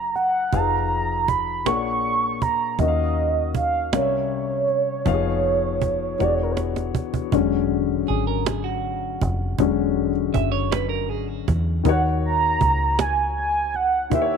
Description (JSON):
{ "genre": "slow six-eight R&B", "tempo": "53 BPM (dotted quarters)", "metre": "6/8", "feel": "straight", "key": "unclear", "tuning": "A4 = 441 Hz", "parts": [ { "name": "mellow horn-like synth lead", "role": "melody", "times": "0.0-6.6, 11.9-14.4 s", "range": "Bb4 to C#6", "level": "-22 LUFS", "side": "right 4 dB", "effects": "chorus, slapback echo" }, { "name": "warm baby grand piano", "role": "accompaniment", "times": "0.0-14.4 s", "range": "Bb2 to Gb5", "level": "-25 LUFS", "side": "left 13 dB", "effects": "none" }, { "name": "deep dub fingered electric bass", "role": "bass", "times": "0.0-14.4 s", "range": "E1 to E2", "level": "-26 LUFS", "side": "equal", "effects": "none" }, { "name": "cajon", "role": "drums", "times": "0.2-14.3 s", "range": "none", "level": "-26 LUFS", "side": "right 6 dB", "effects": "none" }, { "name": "semi-hollow electric guitar", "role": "second line", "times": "8.1-11.8 s", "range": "F#4 to E5", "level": "-28 LUFS", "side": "right 12 dB", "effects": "none" } ], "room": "moderate spring reverb, RT60 2.4 s", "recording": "1960s-style stereo with parts hard left and right", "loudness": "-20 LUFS", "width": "side -6 dB against mid", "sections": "0.0-7.3 A section; 7.3-11.9 B section; 11.9-14.4 C section", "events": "drum fill 6.2-7.3; grand piano solo 7.3-11.9", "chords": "0.0 Gbadd9; 0.5 Fm7b5; 1.7 Bb7alt; 2.8 Ebm9; 3.9 C7b9; 5.1 Fm7b5; 6.2 E13; 11.9 Ebm7" }